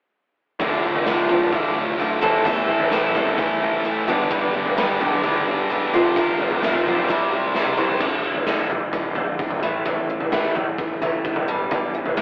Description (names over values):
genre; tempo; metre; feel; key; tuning
quiet-loud alternative rock; 130 BPM; 4/4; straight; D dorian; A4 = 438 Hz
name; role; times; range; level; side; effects
picked steel-string acoustic guitar; arpeggios; 0.6-12.2 s; D2 to C5; -26 LUFS; equal; analog delay
thick fuzz guitar; riff; 0.6-8.0 s; D2 to C4; -26 LUFS; equal; distortion
fuzz picked electric bass; bass; 0.6-12.2 s; D1 to E2; -31 LUFS; equal; overdrive
raw garage drum kit; drums; 0.6-12.2 s; crash cymbal, kick drum, snare drum, toms; -26 LUFS; equal; none
room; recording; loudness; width
moderate stone room reverb, RT60 1.3 s; band playing live in one room, telephone sound; -21 LUFS; mono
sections
0.6-8.0 A section; 8.0-12.2 B section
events
drum fill 7.5-8.0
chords
0.6 Dm; 2.2 Am; 4.1 G; 5.9 F; 7.1 C; 8.0 D5; 9.6 A5; 11.5 G5